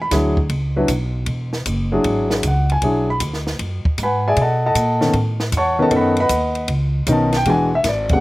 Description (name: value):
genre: jazz, small-group swing and bop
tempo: 156 BPM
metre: 4/4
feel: swing 67% on 8ths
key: unclear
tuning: A4 = 441 Hz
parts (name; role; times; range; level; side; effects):
- warm grand piano; accompaniment; 0.0-8.2 s; C#3 to C#6; -17 LUFS; left 1 dB; none
- upright bass; bass; 0.0-8.2 s; E1 to B2; -21 LUFS; equal; none
- compact cocktail drum kit; drums; 0.1-8.2 s; hi-hat, kick drum, ride cymbal, snare drum; -25 LUFS; equal; none
room: little or no reverb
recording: recorded outdoors, with no room sound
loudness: -16 LUFS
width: side -18 dB against mid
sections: 0.0-8.2 A section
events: none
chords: 0.0 E9; 4.4 B9; 7.5 E9